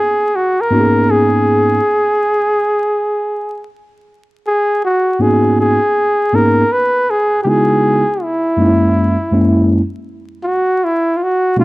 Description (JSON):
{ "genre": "hip hop", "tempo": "80 BPM", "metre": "4/4", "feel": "swing 66% on 16ths", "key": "G# minor", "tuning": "A4 = 440 Hz", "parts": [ { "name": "warm flugelhorn", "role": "melody", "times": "0.0-11.6 s", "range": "E4 to B4", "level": "-14 LUFS", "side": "equal", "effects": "plate reverb" }, { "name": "mellow tine electric piano", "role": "accompaniment", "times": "0.7-11.6 s", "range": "F#2 to G#4", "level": "-13 LUFS", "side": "equal", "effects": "medium stereo tremolo, plate reverb" } ], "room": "moderate studio reverb, RT60 0.5 s", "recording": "dry, gritty hardware recording, vinyl crackle", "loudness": "-12 LUFS", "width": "side -20 dB against mid", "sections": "0.0-4.5 A section; 4.5-11.6 A section", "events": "none", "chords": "0.0 G#madd9; 4.5 G#m11; 7.5 C#m11; 9.0 F#7; 10.5 Bmaj13" }